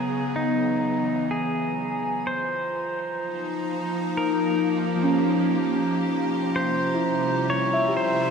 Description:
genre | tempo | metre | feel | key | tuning
ambient | 63 BPM | 4/4 | straight | Eb mixolydian | A4 = 440 Hz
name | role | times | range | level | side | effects
pedal steel guitar | melody | 0.0-8.3 s | D#4 to Db5 | -28 LUFS | equal | shimmer reverb, ping-pong delay
evolving wavetable pad | sustained chords | 0.0-8.3 s | C3 to E5 | -27 LUFS | left 2 dB | ensemble chorus, built-in reverb, shimmer reverb
muted felt-like synth keys | arpeggios | 0.0-8.3 s | F3 to E5 | -25 LUFS | right 1 dB | chorus, shimmer reverb, ping-pong delay
glass harmonica | texture | 0.0-8.3 s | F4 to Bb5 | -32 LUFS | right 3 dB | stereo widening, shimmer reverb
room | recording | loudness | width
wet scoring stage reverb, RT60 1.9 s, digital ambience | none | -22 LUFS | side -6 dB against mid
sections
0.0-8.3 A section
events
none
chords
0.0 Emaj7; 2.3 Ebadd9; 6.1 C

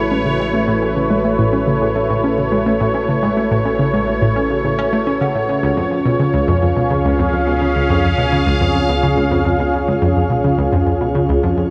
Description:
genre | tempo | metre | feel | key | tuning
ambient | 106 BPM | 4/4 | straight | unclear | A4 = 444 Hz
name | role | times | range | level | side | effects
sweeping resonant pad | sustained chords | 0.0-11.7 s | A3 to E#5 | -21 LUFS | equal | chorus, shimmer reverb
vibraphone with soft mallets | arpeggios | 0.0-11.7 s | E#4 to F#5 | -24 LUFS | equal | tape echo, shimmer reverb
analog pluck | riff | 0.0-11.7 s | C#2 to C#4 | -20 LUFS | equal | chorus, tape echo, shimmer reverb
analog drone | bass | 0.0-11.7 s | A1 to C#2 | -28 LUFS | equal | chorus
room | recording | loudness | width
wet plate reverb, RT60 2.8 s | echo-heavy mix | -16 LUFS | mono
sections
0.0-11.7 A section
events
none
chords
0.0 A; 5.5 C#7

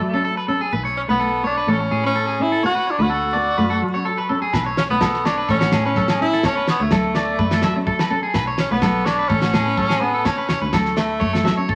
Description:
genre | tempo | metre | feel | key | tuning
highlife guitar band | 126 BPM | 4/4 | straight | A major | A4 = 440 Hz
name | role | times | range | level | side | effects
clear tenor saxophone | melody | 0.0-11.6 s | A3 to F#4 | -24 LUFS | equal | none
fingered electric bass | bass | 0.0-11.8 s | F#1 to F#3 | -29 LUFS | equal | none
flamenco guitar | accompaniment | 0.1-11.8 s | A3 to C#4 | -28 LUFS | equal | none
electric guitar at the edge of break-up | arpeggios | 0.1-11.8 s | F#4 to E5 | -26 LUFS | equal | spring reverb
damped 70s drum kit | drums | 4.5-11.8 s | kick drum, snare drum | -26 LUFS | equal | none
agogo bells | percussion | 4.5-11.6 s | none | -31 LUFS | equal | none
congas | percussion | 4.5-11.8 s | none | -28 LUFS | equal | none
room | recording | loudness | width
wet studio reverb, RT60 0.7 s | vinyl crackle | -19 LUFS | mono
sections
0.0-11.8 A section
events
none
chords
0.0 F#m; 0.7 Bm9; 1.7 Amaj7; 2.6 Dmaj7; 3.6 F#m; 4.5 Bm9; 5.5 Amaj7; 6.4 D5; 7.4 F#m7; 8.3 Bm9; 9.3 Amaj7; 10.3 D5; 11.2 F#m7

